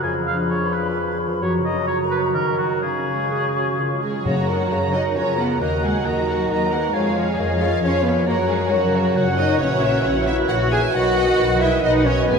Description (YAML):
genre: classical, dramatic, fast romantic movement for symphony orchestra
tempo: 134 BPM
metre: 3/4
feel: straight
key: F# major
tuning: A4 = 440 Hz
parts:
  - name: dark clarinet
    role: second line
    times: 0.0-12.4 s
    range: E#4 to D#5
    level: -27 LUFS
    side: equal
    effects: none
  - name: small flute group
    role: second line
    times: 0.0-4.0 s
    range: A#5 to C#6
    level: -30 LUFS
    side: left 2 dB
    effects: none
  - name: warm oboe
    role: second line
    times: 0.0-12.4 s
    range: F#4 to A#5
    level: -27 LUFS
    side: right 2 dB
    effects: none
  - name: dark bassoon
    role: accompaniment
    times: 0.0-12.4 s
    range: A#2 to F#3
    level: -27 LUFS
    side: left 1 dB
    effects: none
  - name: concert harp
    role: arpeggios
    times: 0.0-12.4 s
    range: F2 to D#5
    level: -26 LUFS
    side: left 1 dB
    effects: none
  - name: rich studio violin section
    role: second line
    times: 4.0-12.4 s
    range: F#4 to G#5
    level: -27 LUFS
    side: right 1 dB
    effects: none
  - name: warm symphonic cello section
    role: bass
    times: 4.0-12.4 s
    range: F#3 to G#4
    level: -23 LUFS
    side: equal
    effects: none
  - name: warm symphonic violin section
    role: melody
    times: 4.3-12.4 s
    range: C#5 to A#5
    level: -30 LUFS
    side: left 2 dB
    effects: none
  - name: warm symphonic viola section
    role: accompaniment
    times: 4.3-12.4 s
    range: D#4 to F#5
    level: -29 LUFS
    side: right 1 dB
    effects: none
  - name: warm French horn section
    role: sustained chords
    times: 4.3-12.4 s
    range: F#4 to E5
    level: -26 LUFS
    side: right 1 dB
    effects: none
  - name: rich symphonic double bass section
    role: bass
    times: 4.3-12.4 s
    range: G#1 to F#2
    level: -26 LUFS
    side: equal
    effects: none
  - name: timpani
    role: percussion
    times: 4.3-4.9 s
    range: F#2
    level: -30 LUFS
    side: left 2 dB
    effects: none
room: wet cathedral reverb, RT60 5.3 s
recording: in a vast, echoing space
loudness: -17 LUFS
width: side -5 dB against mid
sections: 0.0-4.3 A section; 4.3-12.4 B section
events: none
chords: 0.0 Fdim7; 1.4 F#; 2.3 D#m; 2.8 C#sus4; 3.8 C#; 4.3 F#; 5.6 D#m; 6.9 C#/E#; 8.3 F#; 9.6 F#7/A#; 11.0 B